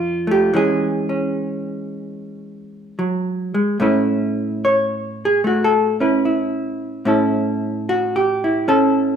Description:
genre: solo jazz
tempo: 74 BPM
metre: 4/4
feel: swing 69% on 8ths, rubato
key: A major from 3.8 s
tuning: A4 = 435 Hz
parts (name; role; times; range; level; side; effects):
- vintage hollow-body jazz guitar; solo; 0.0-9.2 s; F2 to C#5; -17 LUFS; right 1 dB; none
room: moderate large studio reverb, RT60 1.4 s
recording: close, detailed microphones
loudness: -16 LUFS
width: side -7 dB against mid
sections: 0.0-3.8 A section; 3.8-9.2 B section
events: hollow-body jazz guitar solo 3.8-9.2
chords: 0.0 F; 0.5 E69; 3.8 Aadd9; 7.1 A

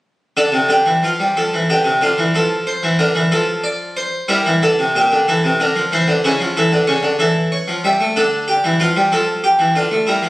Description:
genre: classical, baroque-style suite movement for harpsichord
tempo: 62 BPM (dotted quarters)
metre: 12/8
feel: rubato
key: D minor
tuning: A4 = 440 Hz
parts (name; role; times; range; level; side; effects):
- harpsichord; solo; 0.4-10.3 s; Bb2 to E5; -14 LUFS; equal; none
room: wet stone room reverb, RT60 1.1 s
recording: recorded on a phone in the room, club reverb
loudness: -14 LUFS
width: side -18 dB against mid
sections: 0.4-10.3 A section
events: none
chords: 0.4 Dm; 4.3 Em7b5; 6.2 A7/C#; 8.2 Dm

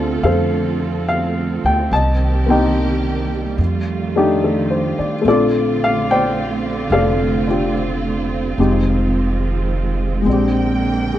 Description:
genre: jazz ballad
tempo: 72 BPM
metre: 4/4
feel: swing 68% on 8ths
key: Bb major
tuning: A4 = 436 Hz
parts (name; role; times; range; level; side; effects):
- dark baby grand piano; accompaniment; 0.0-11.2 s; Ab3 to A5; -18 LUFS; left 2 dB; none
- warm studio string section; sustained chords; 0.0-11.2 s; D3 to G5; -22 LUFS; right 5 dB; none
- upright bass; bass; 0.0-11.2 s; F1 to F2; -21 LUFS; equal; none
room: light reverb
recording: dry, close 1970s-style studio recording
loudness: -15 LUFS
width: side -12 dB against mid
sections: 0.0-11.2 A section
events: none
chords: 0.0 Dm7; 1.9 Cm7; 3.6 F13; 5.3 Bbmaj9; 8.6 Fm7; 10.3 Bb13

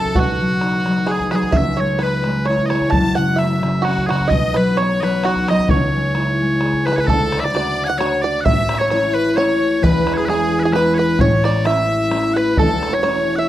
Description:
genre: celtic folk, Celtic waltz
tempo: 130 BPM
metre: 3/4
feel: swing 54% on 8ths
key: C# minor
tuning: A4 = 441 Hz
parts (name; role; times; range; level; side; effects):
- loud bright bagpipes; melody; 0.0-13.5 s; F#4 to A5; -22 LUFS; right 1 dB; none
- bluegrass banjo; second line; 0.0-13.5 s; F#4 to A5; -23 LUFS; right 5 dB; none
- clear fiddle; second line; 0.0-13.5 s; F#4 to A5; -24 LUFS; left 5 dB; none
- concert harp; accompaniment; 0.0-13.5 s; E1 to G#4; -18 LUFS; equal; none
- bodhran; percussion; 0.1-13.2 s; none; -22 LUFS; left 1 dB; none
room: studio reverb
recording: dry, close 1970s-style studio recording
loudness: -15 LUFS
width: side -13 dB against mid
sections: 0.0-7.1 A section; 7.1-13.5 B section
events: none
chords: 0.2 B; 1.5 C#m7; 2.9 F#m; 4.3 B; 5.7 C#m; 7.1 D; 8.5 A; 9.8 E; 11.2 A

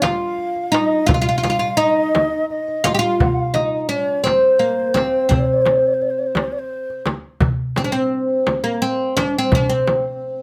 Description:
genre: Arabic maqam ensemble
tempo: 57 BPM (dotted quarters)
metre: 6/8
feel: straight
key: C maqam bayati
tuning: A4 = 440 Hz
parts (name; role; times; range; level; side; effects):
- oud; melody; 0.0-10.4 s; Bb3 to G4; -20 LUFS; equal; none
- breathy low ney; second line; 0.0-7.1 s; C5 to F5; -26 LUFS; equal; none
- darbuka; percussion; 0.0-10.0 s; none; -25 LUFS; equal; none
- frame drum; percussion; 0.0-10.0 s; none; -25 LUFS; equal; none
room: moderate studio reverb, RT60 0.6 s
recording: none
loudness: -19 LUFS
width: mono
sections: 0.0-7.4 A section; 7.4-10.4 B section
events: none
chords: none

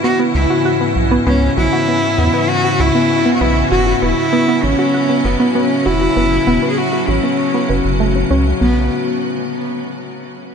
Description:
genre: IDM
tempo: 98 BPM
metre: 4/4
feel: straight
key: unclear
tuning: A4 = 439 Hz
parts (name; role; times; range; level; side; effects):
- warm cello; melody; 0.0-8.9 s; B3 to G#4; -17 LUFS; equal; analog delay
- icy glass pad; sustained chords; 0.0-8.9 s; G#2 to F#4; -20 LUFS; left 2 dB; chorus, built-in reverb
- warbly dusty pluck; arpeggios; 0.0-8.9 s; A3 to B4; -18 LUFS; right 1 dB; chorus, diffuse ambient delay
- rubbery square bass; bass; 0.3-8.9 s; E1 to E2; -17 LUFS; equal; tube saturation
room: wet huge ambient reverb, RT60 8.3 s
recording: dreamy mix soaked in reverb, nothing above 11.0 kHz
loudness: -12 LUFS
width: side -6 dB against mid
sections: 0.0-8.6 A section; 8.6-10.5 B section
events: none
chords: 0.0 C#m; 3.7 F#m; 8.6 Bm

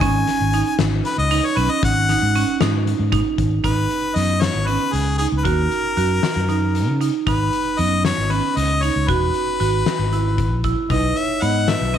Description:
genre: progressive instrumental, band music in an uneven meter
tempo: 231 BPM (eighths)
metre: 7/8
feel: straight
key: G# minor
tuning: A4 = 440 Hz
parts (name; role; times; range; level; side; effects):
- bright harmonica; melody; 0.0-12.0 s; G#4 to G#5; -22 LUFS; left 4 dB; none
- marimba with hard mallets; arpeggios; 0.0-12.0 s; B3 to F#4; -23 LUFS; right 11 dB; slapback echo
- fingered electric bass; bass; 0.0-12.0 s; E1 to C#3; -20 LUFS; left 1 dB; none
- oversized low-tuned drum kit; drums; 0.0-12.0 s; hi-hat, kick drum, snare drum; -26 LUFS; left 5 dB; none
- vibraphone with medium mallets; second line; 10.9-12.0 s; B4 to D#5; -26 LUFS; left 14 dB; none
room: light reverb, studio reverb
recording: 1960s-style stereo with parts hard left and right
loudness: -17 LUFS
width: side -9 dB against mid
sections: 0.0-3.6 A section; 3.6-12.0 B section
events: harmonica solo 0.0-3.6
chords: 0.0 G#5; 3.6 G#m; 5.5 D#m; 7.3 G#m; 9.1 Eadd9; 10.9 B

